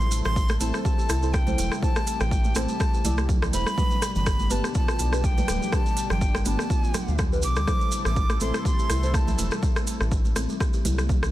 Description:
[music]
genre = afro house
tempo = 123 BPM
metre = 4/4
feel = swing 55% on 16ths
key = A minor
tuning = A4 = 440 Hz
[part]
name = breathy bright jazz flute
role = melody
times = 0.0-9.6 s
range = G5 to D6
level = -31 LUFS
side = equal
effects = ping-pong delay
[part]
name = warm analog pad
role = sustained chords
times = 0.0-11.3 s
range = B2 to A4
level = -38 LUFS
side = left 1 dB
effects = chorus, sidechain pumping
[part]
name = kalimba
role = arpeggios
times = 0.0-11.2 s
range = F3 to G4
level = -34 LUFS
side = left 2 dB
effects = sidechain pumping, ping-pong delay
[part]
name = deep mellow chord stab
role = stabs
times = 0.0-9.6 s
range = D4 to D5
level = -36 LUFS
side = right 1 dB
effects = chorus, phaser, sidechain pumping, ping-pong delay
[part]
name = round analog bass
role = bass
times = 0.0-11.3 s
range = D1 to D2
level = -26 LUFS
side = equal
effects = sidechain pumping
[part]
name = maracas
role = percussion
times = 0.0-11.3 s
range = none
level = -37 LUFS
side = right 4 dB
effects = none
[part]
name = afro-pop drum kit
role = drums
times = 0.1-11.3 s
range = hi-hat, rim click, toms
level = -31 LUFS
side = equal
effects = none
[part]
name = electronic kick drum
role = drums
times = 0.4-11.2 s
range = none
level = -25 LUFS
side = equal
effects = overdrive
[part]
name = congas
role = percussion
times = 0.5-11.2 s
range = none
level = -34 LUFS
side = right 4 dB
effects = none
[sound]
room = small room reverb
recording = dense, heavily limited modern master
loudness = -22 LUFS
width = side -15 dB against mid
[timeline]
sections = 0.0-11.3 A section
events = none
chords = 0.0 Am; 3.8 G; 7.7 Am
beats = 0.36 0.85 1.34 | 1.83 2.31 2.80 3.29 | 3.78 4.26 4.75 5.24 | 5.73 6.22 6.71 7.19 | 7.68 8.17 8.66 9.14 | 9.63 10.12 10.61 11.10

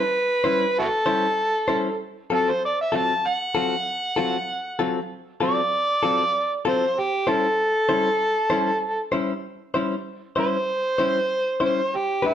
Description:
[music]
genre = blues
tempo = 97 BPM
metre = 4/4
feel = straight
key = unclear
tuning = A4 = 440 Hz
[part]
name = overdriven harmonica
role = melody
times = 0.0-12.3 s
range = E4 to A5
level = -22 LUFS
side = right 1 dB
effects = none
[part]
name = direct-recorded clean electric guitar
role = stabs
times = 0.0-12.3 s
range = F#3 to B#4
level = -25 LUFS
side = left 3 dB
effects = none
[sound]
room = wet stone room reverb, RT60 1.1 s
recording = band playing live in one room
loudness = -20 LUFS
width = side -10 dB against mid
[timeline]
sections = 0.0-12.3 A section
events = none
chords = 0.0 A7#9; 2.0 D7#9; 7.0 A7#9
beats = 0.14 0.76 1.38 | 2.00 2.62 3.24 3.86 | 4.48 5.10 5.72 6.34 | 6.96 7.58 8.20 8.82 | 9.44 10.06 10.68 11.30 | 11.92

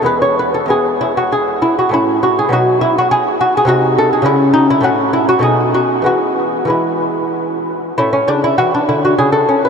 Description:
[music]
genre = classical, baroque-style dance for lute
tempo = 93-107 BPM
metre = 3/4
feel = rubato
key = E major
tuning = A4 = 440 Hz
[part]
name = lute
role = solo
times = 0.0-9.7 s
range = E2 to C#5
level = -11 LUFS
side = equal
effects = ping-pong delay
[sound]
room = wet huge ambient reverb, RT60 8.7 s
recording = dreamy mix soaked in reverb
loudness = -11 LUFS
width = side -6 dB against mid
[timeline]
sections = 0.0-8.0 A section; 8.0-9.7 A section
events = none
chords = 0.1 E; 1.9 A; 2.5 B; 3.7 G#7/B#; 4.3 C#m; 4.8 F#m/A; 5.4 B7; 6.1 E; 8.0 A; 9.2 A/C#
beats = 0.08 | 0.71 1.33 1.93 | 2.53 3.12 3.69 | 4.26 4.83 5.43 | 6.06 6.70 7.34 | 7.98 8.59 9.19

